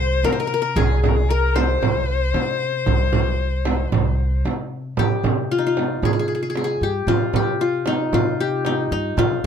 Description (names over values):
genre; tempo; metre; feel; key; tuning
Arabic maqam ensemble; 114 BPM; 4/4; straight; C minor; A4 = 441 Hz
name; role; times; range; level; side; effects
qanun; melody; 0.0-9.5 s; Eb4 to C5; -22 LUFS; left 4 dB; none
dark violin; second line; 0.0-4.4 s; Ab4 to C5; -25 LUFS; left 8 dB; none
upright bass; bass; 0.0-9.5 s; C2 to C3; -23 LUFS; equal; none
frame drum; percussion; 0.2-9.3 s; none; -23 LUFS; right 5 dB; none
room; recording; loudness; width
little or no reverb; close, detailed microphones; -18 LUFS; side -8 dB against mid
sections
0.0-5.0 A section; 5.0-9.5 B section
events
none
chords
none